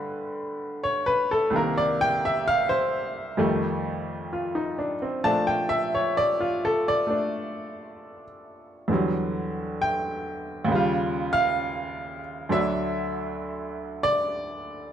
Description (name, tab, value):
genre	solo jazz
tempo	66 BPM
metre	4/4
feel	swing 69% on 8ths, rubato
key	unclear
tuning	A4 = 440 Hz
part	bright upright piano	solo	0.0-14.9 s	C2 to A5	-24 LUFS	equal	none
room	moderate large studio reverb, RT60 1.2 s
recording	dark, warm production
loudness	-23 LUFS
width	side -9 dB against mid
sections	0.0-14.9 A section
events	upright piano solo 0.0-14.9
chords	0.0 Gmaj7; 1.5 Cm7; 3.4 F9; 5.2 Bbmaj7; 8.9 Em9; 10.7 Eb9; 12.5 D